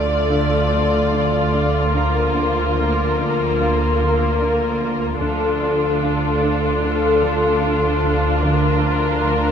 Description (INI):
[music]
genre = cinematic, suspense film score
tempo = 74 BPM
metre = 4/4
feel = straight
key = D minor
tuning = A4 = 440 Hz
[part]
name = muted symphonic violin section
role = melody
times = 0.0-9.5 s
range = A4 to D5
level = -23 LUFS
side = left 2 dB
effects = none
[part]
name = muted symphonic violin section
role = second line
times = 0.0-9.5 s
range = F4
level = -24 LUFS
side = left 1 dB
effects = none
[part]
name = muted studio viola section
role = accompaniment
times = 0.0-9.5 s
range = A3 to D4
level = -25 LUFS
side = right 1 dB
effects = none
[part]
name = dark French horn section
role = sustained chords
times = 0.0-9.5 s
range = F3 to Bb4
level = -23 LUFS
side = left 3 dB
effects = none
[part]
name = muted symphonic cello section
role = riff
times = 0.0-9.5 s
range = D3 to D4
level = -28 LUFS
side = right 3 dB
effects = none
[part]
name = muted symphonic cello section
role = bass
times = 0.0-9.5 s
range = D3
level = -26 LUFS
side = right 5 dB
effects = none
[part]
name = muted symphonic double bass section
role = bass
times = 0.0-9.5 s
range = D2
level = -26 LUFS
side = right 3 dB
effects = none
[part]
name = punchy sub bass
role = drone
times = 0.0-9.5 s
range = D2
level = -25 LUFS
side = equal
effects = none
[part]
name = muted symphonic violin section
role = texture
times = 0.0-4.7 s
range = D6 to F6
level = -32 LUFS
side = left 3 dB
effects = none
[sound]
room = moderate scoring stage reverb, RT60 1.7 s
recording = none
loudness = -16 LUFS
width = side -8 dB against mid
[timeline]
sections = 0.0-9.5 A section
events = none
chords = 0.0 Dm; 1.9 Bb/D; 5.2 Dm; 8.4 Bb/D